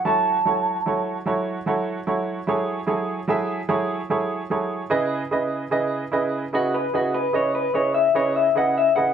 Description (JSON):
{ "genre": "blues", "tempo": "49 BPM (dotted quarters)", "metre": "12/8", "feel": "straight", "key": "C# minor", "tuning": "A4 = 439 Hz", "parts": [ { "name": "electric guitar through a small old amp", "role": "melody", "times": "0.0-9.1 s", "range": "F#4 to A5", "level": "-20 LUFS", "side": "left 2 dB", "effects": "none" }, { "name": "bright upright piano", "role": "accompaniment", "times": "0.1-9.1 s", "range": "C#3 to E5", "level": "-23 LUFS", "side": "right 3 dB", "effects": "none" } ], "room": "wet studio reverb, RT60 0.7 s", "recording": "band playing live in one room", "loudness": "-20 LUFS", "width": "side -8 dB against mid", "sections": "0.0-9.1 A section", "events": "clean electric guitar solo 0.0-9.1", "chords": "0.0 F#m7; 4.9 C#m7" }